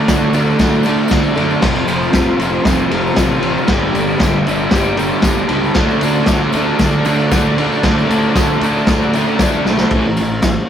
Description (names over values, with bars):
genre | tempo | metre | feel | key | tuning
garage rock duo or trio | 116 BPM | 4/4 | straight | unclear | A4 = 439 Hz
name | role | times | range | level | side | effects
combo organ | sustained chords | 0.0-9.9 s | F4 to B5 | -26 LUFS | equal | none
crunchy overdriven guitar | riff | 0.0-10.6 s | F2 to D4 | -15 LUFS | right 1 dB | spring reverb
fuzz fingered electric bass | bass | 0.1-10.6 s | F1 to F#2 | -23 LUFS | equal | overdrive
vintage drum kit | drums | 0.1-10.6 s | crash cymbal, kick drum, ride cymbal, snare drum | -16 LUFS | left 1 dB | none
tambourine | percussion | 0.1-10.5 s | none | -35 LUFS | left 5 dB | none
room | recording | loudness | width
light reverb | rough rehearsal-room recording, warm saturation | -12 LUFS | side -9 dB against mid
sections
0.0-9.9 A section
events
transistor combo organ fill 4.2-5.8, 8.4-9.9; drum fill 9.7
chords
0.0 D; 1.6 F; 3.7 G; 5.8 D; 9.9 A5